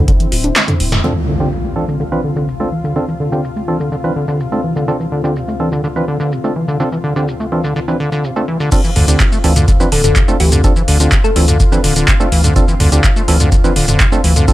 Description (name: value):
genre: acid house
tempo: 125 BPM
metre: 4/4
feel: straight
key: D minor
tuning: A4 = 439 Hz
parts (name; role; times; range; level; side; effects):
- lush unison pad; sustained chords; 0.0-14.5 s; D2 to F4; -24 LUFS; left 2 dB; chorus, sidechain pumping
- deep acid bass; riff; 0.0-14.5 s; D2 to F4; -18 LUFS; equal; sidechain pumping, dub echo
- saturated sub bass; bass; 0.0-1.0, 9.0-14.4 s; D1 to D2; -14 LUFS; equal; sidechain pumping
- electro analog drum machine; drums; 0.1-14.5 s; crash cymbal, handclaps, hi-hat, shaker, snare drum, toms; -16 LUFS; equal; low-pass filter on hats, low-pass filter on toms, low-pass filter on snare, low-pass filter on perc, low-pass filter on cymbals
- electronic kick drum; drums; 0.1-0.2, 8.7-14.5 s; none; -13 LUFS; equal; none
- percussive organ stab; stabs; 1.0-14.5 s; C4 to B4; -21 LUFS; right 2 dB; chorus, cassette tape, dub echo
- impact; sound effects; 1.0-3.0 s; none; -21 LUFS; equal; none
- thumb-piano-like synth pluck; melody; 9.9-11.7 s; G4 to A4; -21 LUFS; left 4 dB; chorus, phaser, digital delay
room: light reverb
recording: faint mains hum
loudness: -12 LUFS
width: side -15 dB against mid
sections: 0.0-1.0 A section; 1.0-8.7 B section; 8.7-14.5 C section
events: kick drops out 0.6-1.0; drum fill 0.6-1.0; band accent 0.9; impact 1.0-3.0; filter sweep on synth stab 1.0-8.7; drop 8.7-14.5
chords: 0.0 D7(no3); 1.0 Dm7